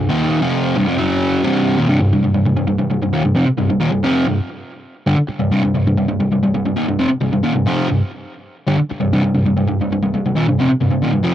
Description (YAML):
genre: rock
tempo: 133 BPM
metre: 4/4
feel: straight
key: C minor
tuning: A4 = 441 Hz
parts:
  - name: crunchy overdriven guitar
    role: solo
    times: 0.0-11.3 s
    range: C2 to F#3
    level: -14 LUFS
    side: equal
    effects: cassette tape, tape echo
room: wet booth ambience, RT60 0.2 s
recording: home recording on cassette, nothing above 10.9 kHz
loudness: -14 LUFS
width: side -11 dB against mid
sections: 0.0-1.9 A section; 1.9-11.3 B section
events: none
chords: 0.0 Cm; 1.0 F#5; 1.4 Cm; 1.9 C5